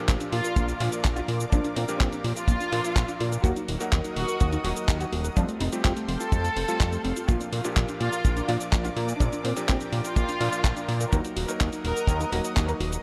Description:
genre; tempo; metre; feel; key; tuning
italo disco; 125 BPM; 4/4; straight; Bb major; A4 = 441 Hz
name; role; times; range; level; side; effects
warm studio violin section; melody; 0.0-13.0 s; C4 to Bb4; -34 LUFS; equal; digital delay
lush unison pad; sustained chords; 0.2-13.0 s; A4 to Eb6; -39 LUFS; equal; chorus
soft round pluck; arpeggios; 0.0-13.0 s; G3 to Eb5; -38 LUFS; equal; chorus, digital delay
clear electric grand piano; stabs; 0.0-13.0 s; Bb2 to Bb4; -37 LUFS; equal; digital delay
fat analog bass; bass; 0.1-13.0 s; Eb1 to Bb2; -32 LUFS; equal; tube saturation
detuned 8-bit digital drum machine; drums; 0.1-13.0 s; cabasa, handclaps, hi-hat; -35 LUFS; equal; none
kick drum; drums; 0.1-12.7 s; none; -26 LUFS; equal; none
room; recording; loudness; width
light reverb, small room reverb; lossy compression artefacts; -26 LUFS; mono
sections
0.0-13.0 A section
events
none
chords
0.0 Bb; 3.4 Ebm; 5.4 Fadd9; 7.3 Bb; 11.1 Ebm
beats
0.09 0.56 1.04 | 1.52 2.00 2.48 2.96 | 3.44 3.92 4.41 4.88 | 5.37 5.84 6.33 6.80 | 7.29 7.76 8.24 8.72 | 9.21 9.69 10.16 10.64 | 11.12 11.61 12.09 12.56

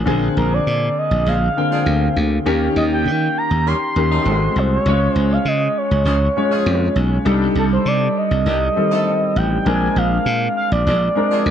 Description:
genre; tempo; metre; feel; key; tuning
pop; 100 BPM; 4/4; straight; unclear; A4 = 442 Hz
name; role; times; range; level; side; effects
warm concert grand piano; accompaniment; 0.0-11.5 s; D3 to G5; -20 LUFS; left 2 dB; wide subtle chorus
glassy slap bass; bass; 0.0-11.5 s; Ab1 to Eb3; -18 LUFS; equal; none
expressive synth lead; melody; 0.4-11.5 s; A4 to C6; -21 LUFS; right 1 dB; chorus
dark horn section; second line; 1.3-11.5 s; D3 to A4; -28 LUFS; right 1 dB; none
room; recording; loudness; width
light reverb, small room ambience; dark, warm production; -15 LUFS; side -9 dB against mid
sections
0.1-11.5 A section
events
none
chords
0.1 Bb9; 2.5 Eb7; 4.3 Ab7b9; 4.9 Db; 7.3 Cm69; 9.7 Bb9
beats
| 0.07 0.67 1.27 1.87 | 2.47 3.07 3.67 4.27 | 4.87 5.47 6.07 6.67 | 7.26 7.86 8.46 9.06 | 9.66 10.26 10.86 11.46

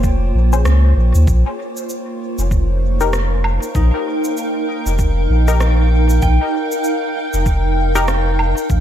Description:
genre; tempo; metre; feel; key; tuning
ambient dub; 97 BPM; 4/4; swing 60% on 16ths; unclear; A4 = 440 Hz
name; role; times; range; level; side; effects
granular cloud pad; sustained chords; 0.0-8.8 s; Bb3 to G5; -21 LUFS; right 1 dB; built-in reverb
warm sub bass; bass; 0.0-8.8 s; F1 to Eb2; -14 LUFS; equal; none
electronic kick drum; drums; 0.0-8.8 s; none; -18 LUFS; equal; none
electronic shaker, rim click and woodblock; drums; 0.0-8.8 s; none; -27 LUFS; right 1 dB; overdrive, dub echo
filtered dub chord stab; stabs; 0.5-8.1 s; Db4 to C5; -24 LUFS; left 4 dB; chorus, dub echo
concert harp; arpeggios; 3.8-7.8 s; Eb4 to G5; -29 LUFS; left 2 dB; dub echo
room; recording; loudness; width
little or no reverb; none; -14 LUFS; side -11 dB against mid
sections
0.0-8.8 A section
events
none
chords
0.0 Bbm9; 1.3 Eb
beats
0.04 0.66 | 1.28 1.90 2.52 3.13 | 3.75 4.37 4.99 5.61 | 6.23 6.84 7.46 8.08 | 8.70

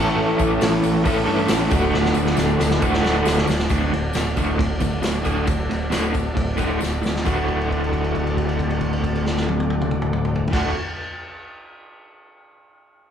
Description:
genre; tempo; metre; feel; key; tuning
garage rock duo or trio; 135 BPM; 4/4; straight; D major; A4 = 443 Hz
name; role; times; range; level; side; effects
overdriven combo organ; sustained chords; 0.0-10.7 s; E4 to D5; -29 LUFS; left 1 dB; none
crunchy overdriven guitar; riff; 0.0-10.7 s; D2 to A4; -21 LUFS; equal; tremolo
growling picked electric bass; bass; 0.0-10.7 s; D1 to G2; -26 LUFS; equal; overdrive
tambourine; percussion; 0.1-7.5 s; none; -39 LUFS; left 5 dB; none
vintage drum kit; drums; 0.4-10.6 s; crash cymbal, hi-hat, kick drum, ride cymbal, snare drum, toms; -24 LUFS; equal; none
room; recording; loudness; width
moderate large studio reverb, RT60 1.2 s; band playing live in one room; -18 LUFS; side -8 dB against mid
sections
0.0-3.7 A section; 3.7-7.2 B section; 7.2-10.8 C section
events
drum fill 1.9-3.7, 6.8-7.2; held note 7.2-10.5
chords
0.0 A; 1.7 D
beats
| 0.17 0.61 1.05 1.49 | 1.94 2.38 2.82 3.26 | 3.70 4.14 4.58 5.03 | 5.47 5.91 6.36 6.80 | 7.25 7.69 8.14 8.58 | 9.03 9.47 9.92 10.36

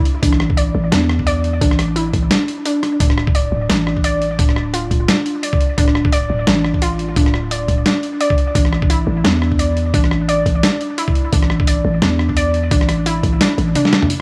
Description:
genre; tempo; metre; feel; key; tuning
half-time drum and bass; 173 BPM; 4/4; swing 57% on 16ths, half-time; unclear; A4 = 438 Hz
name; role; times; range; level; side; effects
warbly dusty pluck; arpeggios; 0.0-14.2 s; D4 to D5; -22 LUFS; equal; chorus, dub echo
boom bap sampler-style drum kit; drums; 0.1-14.2 s; hi-hat, rim click, snare drum, toms; -22 LUFS; equal; none
growling 808-style bass; bass; 0.2-13.8 s; D1 to E2; -20 LUFS; equal; none
electronic kick drum; drums; 0.2-13.3 s; none; -19 LUFS; equal; none
metallic inharmonic drone; texture; 14.1-14.2 s; none; barely audible; none; none
room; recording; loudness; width
light reverb; small room ambience; -16 LUFS; mono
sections
0.0-14.1 A section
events
drum fill 13.8-14.1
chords
0.0 A5; 3.0 D5; 8.6 A5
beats
| 0.23 0.57 0.92 1.27 | 1.62 1.96 2.31 2.66 | 3.00 3.35 3.70 4.04 | 4.39 4.74 5.08 5.43 | 5.78 6.12 6.47 6.82 | 7.17 7.51 7.86 8.21 | 8.55 8.90 9.25 9.59 | 9.94 10.29 10.63 10.98 | 11.33 11.67 12.02 12.37 | 12.71 13.06 13.41 13.76 | 14.10

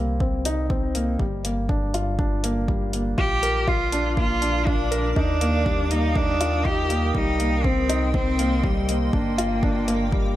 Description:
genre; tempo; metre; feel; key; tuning
piano and strings electronica; 121 BPM; 4/4; straight; unclear; A4 = 439 Hz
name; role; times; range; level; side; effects
felt-muted upright piano; riff; 0.0-10.4 s; G3 to Bb4; -26 LUFS; left 1 dB; ping-pong delay
round analog bass; bass; 0.0-10.4 s; G1 to Eb2; -26 LUFS; equal; sidechain pumping
electronic kick drum; drums; 0.2-10.2 s; none; -25 LUFS; equal; none
electronic hi-hat; drums; 0.5-10.0 s; none; -31 LUFS; left 2 dB; none
rich cello; melody; 3.2-10.4 s; G3 to G4; -25 LUFS; right 1 dB; none
granular cloud pad; sustained chords; 3.8-10.4 s; Bb4 to Eb6; -32 LUFS; equal; built-in reverb
room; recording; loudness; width
light reverb; none; -20 LUFS; side -14 dB against mid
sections
0.0-10.4 A section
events
none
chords
0.0 Cm7; 1.2 Gm7; 3.2 Bb; 5.2 Ebadd9; 7.1 Cm7; 9.1 Gm7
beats
0.20 0.70 | 1.20 1.69 2.19 2.69 | 3.18 3.68 4.17 4.67 | 5.16 5.66 6.16 6.65 | 7.15 7.64 8.14 8.63 | 9.13 9.63 10.12

